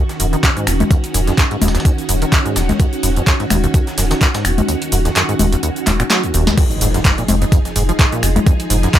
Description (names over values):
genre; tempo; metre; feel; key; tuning
acid house; 127 BPM; 4/4; swing 56% on 16ths; unclear; A4 = 440 Hz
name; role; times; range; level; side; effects
string machine, full ensemble; sustained chords; 0.0-9.0 s; Eb3 to Ab4; -22 LUFS; right 1 dB; ensemble chorus, sidechain pumping
acid bass, saw; riff; 0.0-9.0 s; Eb2 to Gb3; -20 LUFS; equal; analog chorus, sidechain pumping, dub echo
booming analog drum machine; drums; 0.1-9.0 s; congas, crash cymbal, finger snaps, handclaps, hi-hat, shaker, snare drum; -18 LUFS; left 2 dB; overdrive
breakbeat sampler-style drum kit; drums; 0.1-9.0 s; hi-hat, snare drum, tambourine; -28 LUFS; equal; none
warm sub bass; bass; 0.2-8.9 s; Eb1 to F1; -18 LUFS; equal; sidechain pumping
electronic kick drum; drums; 0.4-9.0 s; none; -13 LUFS; equal; overdrive
impact; sound effects; 6.6-8.5 s; none; -26 LUFS; equal; none
room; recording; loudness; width
light reverb; none; -13 LUFS; side -11 dB against mid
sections
0.0-6.6 A section; 6.6-9.0 B section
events
kick drops out 4.7-6.6; drum fill 6.1-6.6; drop 6.6-9.0; impact 6.6-8.5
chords
0.0 Ebm7; 6.6 Fm7